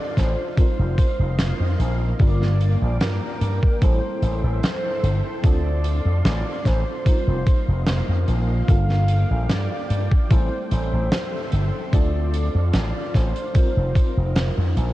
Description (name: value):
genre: vaporwave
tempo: 74 BPM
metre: 4/4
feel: straight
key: G minor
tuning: A4 = 441 Hz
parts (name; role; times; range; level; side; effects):
- warm velvety synth lead; melody; 0.0-14.7 s; Bb4 to F5; -30 LUFS; right 1 dB; chorus, tape echo
- FM electric piano with soft pad layer; accompaniment; 0.0-14.9 s; G3 to Bb4; -31 LUFS; equal; tremolo, ensemble chorus, analog delay
- soft string machine; sustained chords; 0.0-14.9 s; Bb3 to D6; -35 LUFS; equal; ensemble chorus
- slap bass with an envelope filter; bass; 0.2-14.9 s; F1 to G2; -20 LUFS; equal; none
- electronic kick drum; drums; 0.2-14.1 s; none; -18 LUFS; equal; vintage 12-bit sampler grit
- huge arena drum kit; drums; 0.2-14.9 s; hi-hat, snare drum; -28 LUFS; equal; vintage 12-bit sampler grit
room: light reverb, studio reverb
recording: cassette tape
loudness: -18 LUFS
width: side -16 dB against mid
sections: 0.0-14.9 A section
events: none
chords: 0.0 Dm7; 0.6 F7sus4; 2.2 Gm7; 3.8 Am7; 5.4 Dm7; 7.1 F7sus4; 8.7 Gm7; 10.3 Am7; 11.9 Dm7; 13.5 F7sus4